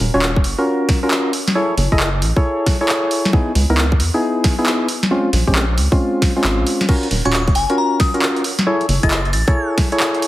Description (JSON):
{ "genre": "UK garage, two-step garage", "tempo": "135 BPM", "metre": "4/4", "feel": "swing 65% on 16ths", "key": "unclear", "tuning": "A4 = 444 Hz", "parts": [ { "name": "rubbery square bass", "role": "bass", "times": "0.0-9.4 s", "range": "Eb1 to Fb2", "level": "-18 LUFS", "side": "equal", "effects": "sidechain pumping" }, { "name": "punchy analog drum machine", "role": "drums", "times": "0.0-10.3 s", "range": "crash cymbal, handclaps, hi-hat, snare drum", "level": "-20 LUFS", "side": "equal", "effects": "overdrive" }, { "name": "percussive organ stab", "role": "stabs", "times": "0.1-10.3 s", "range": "Ab3 to Eb5", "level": "-18 LUFS", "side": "equal", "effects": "chorus, digital delay" }, { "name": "electronic kick drum", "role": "drums", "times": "0.4-9.9 s", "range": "none", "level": "-16 LUFS", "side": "equal", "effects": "none" }, { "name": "glassy synth bell", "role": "melody", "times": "7.3-9.7 s", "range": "Ab5 to A6", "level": "-22 LUFS", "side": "left 3 dB", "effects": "chorus, phaser, vintage 12-bit sampler grit, digital delay" } ], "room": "moderate digital room reverb, RT60 1.2 s", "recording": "heavily compressed radio sound, multiband compression", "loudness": "-14 LUFS", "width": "side -15 dB against mid", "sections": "0.0-10.3 A section", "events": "none", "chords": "0.0 Ebm9; 1.3 Gbm9; 3.3 Dbm9; 4.9 Bbm9; 6.9 Ebm9; 8.4 Gbm9", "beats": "0.22 0.67 1.11 | 1.55 2.00 2.44 2.89 | 3.33 3.78 4.22 4.67 | 5.11 5.55 6.00 6.44 | 6.89 7.33 7.78 8.22 | 8.67 9.11 9.55 10.00" }